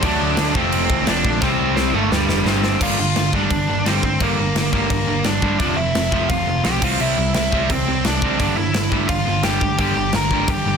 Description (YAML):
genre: punk rock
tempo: 172 BPM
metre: 4/4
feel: straight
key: G dorian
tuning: A4 = 441 Hz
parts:
  - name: high-gain lead guitar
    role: melody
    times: 0.0-10.8 s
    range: G3 to Bb5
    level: -22 LUFS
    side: left 1 dB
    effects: distortion
  - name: crunchy overdriven guitar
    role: riff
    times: 0.0-10.8 s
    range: F2 to D4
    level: -26 LUFS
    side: left 12 dB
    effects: none
  - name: distorted electric guitar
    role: riff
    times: 0.0-10.8 s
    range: F2 to E4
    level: -23 LUFS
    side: right 12 dB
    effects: distortion
  - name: sludgy distorted guitar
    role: riff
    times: 0.0-10.8 s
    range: F2 to E4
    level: -27 LUFS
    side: left 1 dB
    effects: overdrive
  - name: overdriven picked electric bass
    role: bass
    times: 0.0-10.8 s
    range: F1 to D2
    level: -25 LUFS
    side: equal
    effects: none
  - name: big rock drum kit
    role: drums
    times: 0.0-10.6 s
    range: crash cymbal, kick drum, snare drum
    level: -22 LUFS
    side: equal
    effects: none
room: light reverb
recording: dense, heavily limited modern master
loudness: -16 LUFS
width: side -6 dB against mid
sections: 0.0-2.8 A section; 2.8-10.8 B section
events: drum fill 1.4-2.8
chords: 0.0 D; 0.6 F; 1.4 C; 1.9 Gm; 5.6 F; 6.8 C; 8.4 Gm